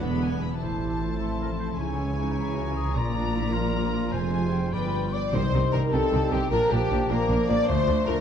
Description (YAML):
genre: cinematic, heroic adventure film score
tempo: 102 BPM (dotted quarters)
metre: 6/8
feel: straight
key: unclear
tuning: A4 = 440 Hz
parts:
  - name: warm symphonic violin section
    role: melody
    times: 0.0-8.1 s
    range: G4 to B5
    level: -36 LUFS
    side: left 4 dB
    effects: none
  - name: warm symphonic violin section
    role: second line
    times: 0.0-8.2 s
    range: G4 to D5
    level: -37 LUFS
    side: left 3 dB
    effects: none
  - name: warm symphonic viola section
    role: accompaniment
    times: 0.0-8.2 s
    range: Eb3 to F4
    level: -35 LUFS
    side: right 2 dB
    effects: none
  - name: mellow French horn section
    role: sustained chords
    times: 0.0-8.2 s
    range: G#3 to D5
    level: -30 LUFS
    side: left 1 dB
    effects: none
  - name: concert harp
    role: arpeggios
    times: 0.0-8.2 s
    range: F2 to D6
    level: -33 LUFS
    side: left 8 dB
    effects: none
  - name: rich symphonic cello section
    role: bass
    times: 0.0-8.2 s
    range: D2 to C#3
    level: -31 LUFS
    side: right 1 dB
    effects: none
  - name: rich symphonic double bass section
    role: bass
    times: 0.0-8.2 s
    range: E1 to D2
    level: -30 LUFS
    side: right 2 dB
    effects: none
  - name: concert flute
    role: second line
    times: 0.6-8.2 s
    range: G5 to D6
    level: -35 LUFS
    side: left 2 dB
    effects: none
  - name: warm clarinet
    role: second line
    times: 0.6-8.2 s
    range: A3 to G#4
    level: -35 LUFS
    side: left 1 dB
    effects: none
  - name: warm oboe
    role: second line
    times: 0.6-5.1 s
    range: A4 to D5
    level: -40 LUFS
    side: right 2 dB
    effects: none
  - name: warm trombone section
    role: sustained chords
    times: 0.6-8.2 s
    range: Bb2 to E4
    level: -36 LUFS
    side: right 4 dB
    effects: none
  - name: timpani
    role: percussion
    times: 5.3-5.9 s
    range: C3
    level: -30 LUFS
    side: left 1 dB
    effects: none
room: wet scoring stage reverb, RT60 1.7 s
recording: dark, warm production, nothing above 10.8 kHz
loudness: -23 LUFS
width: side -8 dB against mid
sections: 0.6-5.3 A section; 5.3-8.2 B section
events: none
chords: 0.0 E7; 0.6 Am; 1.8 C#m; 3.0 Bb; 4.1 Fm; 4.7 G7; 5.3 Cm; 6.5 Bb; 7.7 Dm